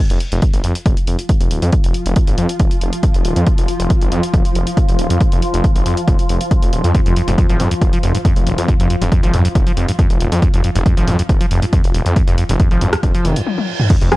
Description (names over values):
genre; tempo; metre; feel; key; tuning
driving peak-time techno; 138 BPM; 4/4; straight; unclear; A4 = 439 Hz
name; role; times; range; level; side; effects
swarming drone; drone; 1.2-14.2 s; F3 to F4; -24 LUFS; left 1 dB; built-in reverb, sidechain pumping
detuned saw bass; bass; 0.1-14.1 s; Eb1 to F2; -18 LUFS; equal; sidechain pumping
punchy analog drum machine; drums; 0.1-14.2 s; crash cymbal, hi-hat, rim click, toms; -25 LUFS; left 1 dB; none
electronic kick drum; drums; 0.4-14.0 s; none; -14 LUFS; equal; none
acid bass, saw; riff; 6.9-14.2 s; F1 to F3; -19 LUFS; equal; sidechain pumping
reverse cymbal and impact; sound effects; 13.2-14.2 s; none; -26 LUFS; right 3 dB; none
filtered dub chord stab; stabs; 14.1-14.2 s; F3 to Ab4; -13 LUFS; left 1 dB; phaser, sidechain pumping
room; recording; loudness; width
little or no reverb; dry, gritty hardware recording; -13 LUFS; side -18 dB against mid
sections
0.0-13.9 A section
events
reverse cymbal 13.2-13.9; drum fill 13.5-13.9; impact 13.9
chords
none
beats
0.42 0.86 1.29 | 1.73 2.16 2.60 3.03 | 3.47 3.90 4.34 4.77 | 5.21 5.64 6.08 6.51 | 6.95 7.38 7.81 8.25 | 8.68 9.12 9.55 9.99 | 10.42 10.86 11.29 11.73 | 12.16 12.60 13.03 13.47 | 13.90